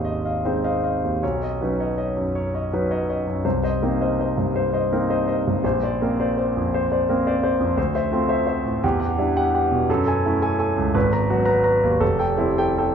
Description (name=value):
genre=classical, impressionist solo piano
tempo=56 BPM (dotted quarters)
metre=6/8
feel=uneven beats, rubato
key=unclear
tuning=A4 = 440 Hz
part: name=clear concert grand piano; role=solo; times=0.0-12.9 s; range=F1 to Bb5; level=-19 LUFS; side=equal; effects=none
room=wet recital hall reverb, RT60 1.8 s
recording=minimal, uncompressed stereo recording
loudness=-19 LUFS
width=side -7 dB against mid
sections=0.0-12.9 A section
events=none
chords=0.0 Ab6; 1.2 Badd9; 3.5 Cm7; 5.6 Bbadd9; 7.8 Dm9; 8.8 Em9; 9.9 F#m9; 11.0 Abm9; 12.0 Fmaj9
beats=0.06 | 1.23 2.34 | 3.45 4.55 | 5.64 6.73 | 7.78 8.84 | 9.89 10.95 | 12.02